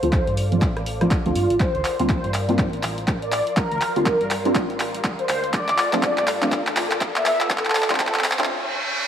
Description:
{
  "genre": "deep house",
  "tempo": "122 BPM",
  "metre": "4/4",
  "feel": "swing 60% on 16ths",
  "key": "D minor",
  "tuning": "A4 = 439 Hz",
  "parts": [
    { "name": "mellow horn-like synth lead", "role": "melody", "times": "0.0-8.2 s", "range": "F4 to E5", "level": "-25 LUFS", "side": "equal", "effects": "ensemble chorus, tape echo" },
    { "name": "soft string machine", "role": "sustained chords", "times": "0.0-8.5 s", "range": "F4 to D6", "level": "-32 LUFS", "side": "equal", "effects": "phaser, ensemble chorus, sidechain pumping" },
    { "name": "filtered dub chord stab", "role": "stabs", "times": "0.0-8.5 s", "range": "F3 to F4", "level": "-25 LUFS", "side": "right 1 dB", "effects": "phaser, ensemble chorus, sidechain pumping, analog delay" },
    { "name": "smooth synth bass", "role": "bass", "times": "0.0-8.5 s", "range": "A1 to G2", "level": "-29 LUFS", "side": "equal", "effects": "sidechain pumping" },
    { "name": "punchy analog drum machine", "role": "drums", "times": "0.0-8.5 s", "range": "handclaps, hi-hat, rim click", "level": "-25 LUFS", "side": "equal", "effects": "high-pass filter on snare, high-pass filter on hats, high-pass filter on room" },
    { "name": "electronic kick drum", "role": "drums", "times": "0.1-8.1 s", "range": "none", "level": "-24 LUFS", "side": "equal", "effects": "none" },
    { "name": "riser and reverse cymbal", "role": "sound effects", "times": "3.3-9.1 s", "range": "none", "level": "-31 LUFS", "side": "right 1 dB", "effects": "none" }
  ],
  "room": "moderate digital room reverb, RT60 1.2 s, digital ambience",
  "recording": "vinyl crackle, high-pass filter",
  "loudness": "-19 LUFS",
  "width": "side -9 dB against mid",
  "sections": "0.0-9.1 A section",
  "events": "build-up 0.0-9.1; drum fill 0.0-8.5; filter sweep on synth stab 0.0-9.1; filter sweep on string machine 0.0-9.1; filter sweep 0.0-9.1; riser 3.3-9.1; break 8.5-9.1; reverse cymbal 8.5-9.1",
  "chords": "0.0 Dm7; 1.6 C9sus4; 5.5 Dm7"
}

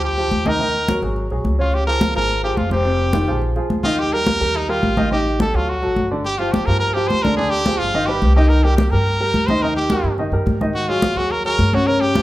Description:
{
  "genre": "Afro-Cuban jazz",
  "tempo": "213 BPM",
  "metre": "4/4",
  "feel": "straight",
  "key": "unclear",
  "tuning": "A4 = 439 Hz",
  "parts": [
    { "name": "brilliant trumpet", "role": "melody", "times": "0.0-12.2 s", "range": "Eb4 to C5", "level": "-21 LUFS", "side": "equal", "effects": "none" },
    { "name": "warm baby grand piano", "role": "accompaniment", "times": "0.0-12.2 s", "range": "C3 to Eb5", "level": "-21 LUFS", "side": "equal", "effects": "none" },
    { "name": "upright bass", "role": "bass", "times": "0.0-12.2 s", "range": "F1 to Ab2", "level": "-21 LUFS", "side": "equal", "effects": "none" },
    { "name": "congas", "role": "percussion", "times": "0.0-12.2 s", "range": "none", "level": "-23 LUFS", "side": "left 1 dB", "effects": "none" }
  ],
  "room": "moderate large studio reverb, RT60 1.1 s",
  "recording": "band playing live in one room",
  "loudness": "-16 LUFS",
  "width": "side -16 dB against mid",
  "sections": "0.0-6.2 A section; 6.2-12.2 B section",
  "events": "none",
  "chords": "0.0 G5; 0.6 Ebmadd11; 1.2 Absus2; 1.7 Db6; 2.9 Fm9; 3.4 Bb7; 4.0 Ebadd9; 5.1 F13/A; 5.7 D; 6.2 G5; 7.4 Ddim; 7.9 Gaug; 8.5 Cm7; 9.6 Eb; 10.7 Absus2"
}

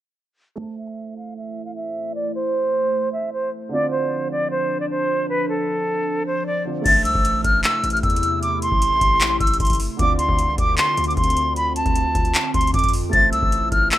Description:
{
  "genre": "hip hop, trap",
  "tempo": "153 BPM",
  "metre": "4/4",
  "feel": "half-time",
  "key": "A minor",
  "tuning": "A4 = 442 Hz",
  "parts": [
    { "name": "silver concert flute", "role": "melody", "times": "0.6-14.0 s", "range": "A4 to A6", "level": "-20 LUFS", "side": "equal", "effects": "low-pass filter, ping-pong delay" },
    { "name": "dark baby grand piano", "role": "accompaniment", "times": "0.6-14.0 s", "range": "D3 to E5", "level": "-32 LUFS", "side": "right 4 dB", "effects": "low-pass filter" },
    { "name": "dark analog pad", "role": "sustained chords", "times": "1.4-14.0 s", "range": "C3 to C5", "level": "-29 LUFS", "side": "equal", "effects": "chorus, phaser, low-pass filter" },
    { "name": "hard-hitting 808-style bass", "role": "bass", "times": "6.9-13.9 s", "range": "A1 to F2", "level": "-26 LUFS", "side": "left 1 dB", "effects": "none" },
    { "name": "booming analog drum machine", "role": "drums", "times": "6.9-14.0 s", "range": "crash cymbal, handclaps, hi-hat, kick drum", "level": "-21 LUFS", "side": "left 1 dB", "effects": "none" }
  ],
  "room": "little or no reverb",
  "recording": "rough home demo mix",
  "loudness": "-18 LUFS",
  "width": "side -13 dB against mid",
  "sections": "0.6-6.9 A section; 6.9-14.0 B section",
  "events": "filter sweep 0.6-6.9",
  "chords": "0.6 Am; 3.7 Dm7; 6.9 Am; 10.0 Dm7; 13.1 Am"
}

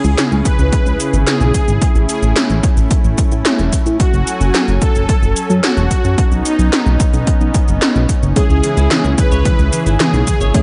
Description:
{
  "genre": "synthwave",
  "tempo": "110 BPM",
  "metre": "4/4",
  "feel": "straight",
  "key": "unclear",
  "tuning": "A4 = 440 Hz",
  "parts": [
    { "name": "soft supersaw", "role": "melody", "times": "0.0-10.6 s", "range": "D#4 to B4", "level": "-24 LUFS", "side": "equal", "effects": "tape echo" },
    { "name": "warm analog pad", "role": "sustained chords", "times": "0.0-10.6 s", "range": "C#3 to G#5", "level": "-23 LUFS", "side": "equal", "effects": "lush chorus, sidechain pumping" },
    { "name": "chorused synth bass", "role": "bass", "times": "0.0-10.5 s", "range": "E1 to A2", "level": "-17 LUFS", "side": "equal", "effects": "sidechain pumping" },
    { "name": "80s electronic pad drums", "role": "drums", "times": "0.0-10.6 s", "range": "handclaps, hi-hat, shaker, snare drum", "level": "-20 LUFS", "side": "equal", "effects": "overdrive" },
    { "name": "electronic kick drum", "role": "drums", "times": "0.5-10.6 s", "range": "none", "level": "-16 LUFS", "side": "equal", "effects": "overdrive" },
    { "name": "clean electric guitar", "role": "arpeggios", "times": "8.4-10.6 s", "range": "E3 to C#5", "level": "-25 LUFS", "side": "equal", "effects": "tape echo" },
    { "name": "FM electric piano with soft pad layer", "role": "stabs", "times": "8.4-10.6 s", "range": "G#3 to C#5", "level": "-25 LUFS", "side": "equal", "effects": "chorus, phaser" }
  ],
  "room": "digital ambience",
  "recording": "dark, warm production, nothing above 10.5 kHz",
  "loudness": "-14 LUFS",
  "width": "mono",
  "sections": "0.0-10.6 A section",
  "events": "none",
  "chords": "0.0 C#m; 1.8 A; 4.0 F#madd9; 6.2 Badd9; 8.4 C#m"
}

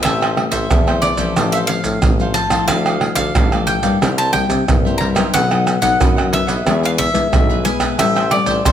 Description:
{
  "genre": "samba and choro",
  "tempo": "91 BPM",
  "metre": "4/4",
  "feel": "straight",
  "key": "A minor",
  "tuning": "A4 = 440 Hz",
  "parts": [
    { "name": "bowl-back mandolin", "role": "melody", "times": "0.0-8.7 s", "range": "C5 to Bb5", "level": "-19 LUFS", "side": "left 1 dB", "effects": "none" },
    { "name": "cavaquinho", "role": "accompaniment", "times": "0.0-8.7 s", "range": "E4 to G5", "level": "-26 LUFS", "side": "right 4 dB", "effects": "none" },
    { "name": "nylon-string guitar", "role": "accompaniment", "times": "0.0-8.7 s", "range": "G2 to F4", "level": "-22 LUFS", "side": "left 7 dB", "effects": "none" },
    { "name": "clear tuba", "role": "bass", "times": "0.0-8.7 s", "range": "A1 to E3", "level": "-21 LUFS", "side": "equal", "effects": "none" },
    { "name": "maracas, surdo, pandeiro and tamborim", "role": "percussion", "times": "0.0-8.7 s", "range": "none", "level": "-17 LUFS", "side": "right 2 dB", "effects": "none" }
  ],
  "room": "light reverb",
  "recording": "none",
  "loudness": "-13 LUFS",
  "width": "side -9 dB against mid",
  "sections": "0.0-8.7 A section",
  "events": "none",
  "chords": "0.0 Am; 2.7 Dmadd9; 4.0 C7; 5.3 B; 6.7 E; 8.0 Am7"
}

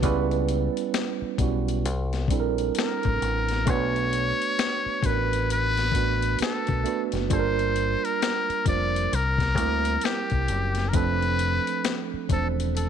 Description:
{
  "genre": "R&B, neo-soul",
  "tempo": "66 BPM",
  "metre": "4/4",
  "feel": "swing 61% on 16ths",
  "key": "unclear",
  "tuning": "A4 = 440 Hz",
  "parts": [
    { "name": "barky tine electric piano", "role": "accompaniment", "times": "0.0-12.9 s", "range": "F3 to C5", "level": "-28 LUFS", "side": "right 13 dB", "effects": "fast stereo tremolo" },
    { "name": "deep dub fingered electric bass", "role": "bass", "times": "0.0-12.9 s", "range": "E1 to D2", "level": "-27 LUFS", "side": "left 2 dB", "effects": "none" },
    { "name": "boom bap sampler-style drum kit", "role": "drums", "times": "0.0-12.9 s", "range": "hi-hat, kick drum, snare drum", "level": "-29 LUFS", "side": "left 6 dB", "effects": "none" },
    { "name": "trumpet with metal mute", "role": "melody", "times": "2.8-12.9 s", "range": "G4 to D5", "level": "-27 LUFS", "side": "left 2 dB", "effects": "none" }
  ],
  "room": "little or no reverb",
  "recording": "1960s-style stereo with parts hard left and right",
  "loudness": "-22 LUFS",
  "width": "side -8 dB against mid",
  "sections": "0.0-12.9 A section",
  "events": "none",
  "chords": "0.0 C#m7b5; 1.8 C9; 3.7 Bm7; 7.3 Gm7; 9.1 C7; 10.9 F6"
}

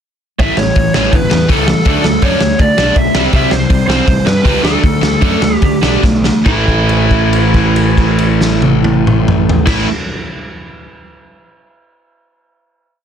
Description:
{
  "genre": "punk rock",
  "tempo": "138-164 BPM",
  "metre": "4/4",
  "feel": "straight",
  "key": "unclear",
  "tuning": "A4 = 439 Hz",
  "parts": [
    { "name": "lead guitar through a small cranked amp", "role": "melody", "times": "0.4-9.8 s", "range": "E4 to E5", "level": "-17 LUFS", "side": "right 1 dB", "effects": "overdrive" },
    { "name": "biting overdriven guitar", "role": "riff", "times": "0.4-9.9 s", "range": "A2 to D4", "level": "-17 LUFS", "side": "left 12 dB", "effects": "none" },
    { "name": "crunchy overdriven guitar", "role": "riff", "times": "0.4-9.9 s", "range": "A2 to D4", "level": "-16 LUFS", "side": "right 15 dB", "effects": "none" },
    { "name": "fuzz picked electric bass", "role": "bass", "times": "0.4-9.8 s", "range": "G1 to G2", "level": "-17 LUFS", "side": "equal", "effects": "overdrive" },
    { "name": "raw garage drum kit", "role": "drums", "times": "0.4-9.8 s", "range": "crash cymbal, hi-hat, kick drum, snare drum, toms", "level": "-14 LUFS", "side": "equal", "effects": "none" }
  ],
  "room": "light reverb",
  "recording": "dense, heavily limited modern master",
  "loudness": "-9 LUFS",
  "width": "side -8 dB against mid",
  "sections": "0.4-6.5 verse; 6.5-9.9 final chord",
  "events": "slowing down 3.3-6.5; drum fill 6.0-6.5; held note 6.5-9.7",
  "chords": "0.4 A; 1.9 D5; 3.1 C5; 4.6 D5; 6.5 A5"
}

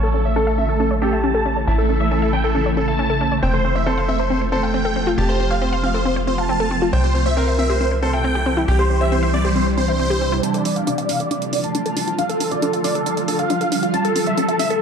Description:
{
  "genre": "uplifting trance",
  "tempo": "137 BPM",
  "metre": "4/4",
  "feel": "straight",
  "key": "D minor",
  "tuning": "A4 = 440 Hz",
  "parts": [
    { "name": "big supersaw lead", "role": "melody", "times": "0.0-14.8 s", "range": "A4 to A5", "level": "-22 LUFS", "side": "right 1 dB", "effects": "phaser, low-pass filter, tape echo" },
    { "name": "clear baby grand piano", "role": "second line", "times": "0.0-10.3 s", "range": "E4 to C#5", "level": "-28 LUFS", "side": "equal", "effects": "digital delay" },
    { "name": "dark grand piano", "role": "second line", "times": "0.0-14.8 s", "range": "A4 to A5", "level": "-31 LUFS", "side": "right 1 dB", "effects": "none" },
    { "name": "shimmering ambient pad", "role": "sustained chords", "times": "0.0-14.8 s", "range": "C3 to F4", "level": "-23 LUFS", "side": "right 1 dB", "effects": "chorus, built-in reverb, phaser" },
    { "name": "wide unison pluck", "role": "arpeggios", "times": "0.0-14.8 s", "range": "C4 to F5", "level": "-25 LUFS", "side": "left 2 dB", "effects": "tape echo" },
    { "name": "tight sequencer bass", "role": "bass", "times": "0.0-10.4 s", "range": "F1 to C2", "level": "-21 LUFS", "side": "equal", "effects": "none" },
    { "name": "electronic hi-hat", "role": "drums", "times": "10.4-14.8 s", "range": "none", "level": "-29 LUFS", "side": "right 4 dB", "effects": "none" }
  ],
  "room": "light reverb",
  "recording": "dark, warm production, low-pass filter",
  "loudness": "-17 LUFS",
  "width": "side -7 dB against mid",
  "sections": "0.0-10.4 A section; 10.4-14.8 B section",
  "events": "filter sweep 0.0-10.4; build-up 10.4-14.8; filter sweep on supersaw synth 10.4-14.8; filter sweep on synth arpeggio sound 10.4-14.8; filter sweep on grand piano 10.4-14.8",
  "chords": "0.0 A; 3.4 F; 6.9 C; 10.4 Dm; 13.9 A"
}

